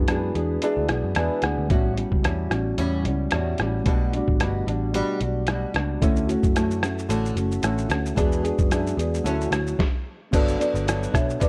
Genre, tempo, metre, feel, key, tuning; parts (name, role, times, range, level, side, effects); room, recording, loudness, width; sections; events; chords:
indie pop, bedroom pop; 111 BPM; 4/4; swing 55% on 16ths; D major; A4 = 440 Hz
flamenco guitar; accompaniment; 0.0-11.5 s; G2 to G#4; -29 LUFS; equal; lush chorus, warbly pitch drift
mellow tine electric piano; accompaniment; 0.0-11.5 s; G3 to G#5; -32 LUFS; equal
vintage muted picked electric bass; bass; 0.0-11.5 s; F#1 to G2; -29 LUFS; equal
lo-fi sampler-style drum kit; drums; 0.1-11.5 s; crash cymbal, hi-hat, kick drum, rim click, shaker, snare drum; -27 LUFS; equal
vibraphone with soft mallets; second line; 10.6-11.5 s; B4 to E5; -29 LUFS; equal; subtle chorus, tape echo
light reverb; -24 LUFS; mono
0.0-10.3 A section; 10.3-11.5 B section
tine electric piano fill 0.9-1.7; stop 9.8-10.3
0.0 E7; 1.7 A13; 3.9 Gmaj7; 6.0 Dmaj7; 8.2 E7; 9.3 Dmaj7; 10.3 Gmaj7